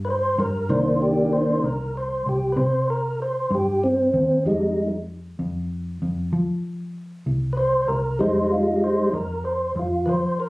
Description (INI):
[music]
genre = slow blues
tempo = 64 BPM (dotted quarters)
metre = 12/8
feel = straight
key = unclear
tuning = A4 = 440 Hz
[part]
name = tonewheel organ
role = sustained chords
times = 0.0-10.5 s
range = Eb3 to C5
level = -21 LUFS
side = equal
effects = slow rotary speaker, overdrive
[part]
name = vintage muted fingered electric bass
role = bass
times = 0.0-10.5 s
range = C2 to F3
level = -26 LUFS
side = equal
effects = none
[sound]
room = moderate small room reverb, RT60 0.5 s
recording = recorded on a phone in the room, club reverb, compression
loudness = -20 LUFS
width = side -22 dB against mid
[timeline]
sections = 0.0-10.5 A section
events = tonewheel organ solo 0.0-10.5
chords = 0.0 Cm7; 4.5 Fm7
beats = | 0.71 1.65 2.58 3.52 | 4.45 5.39 6.33 7.26 | 8.20 9.13 10.07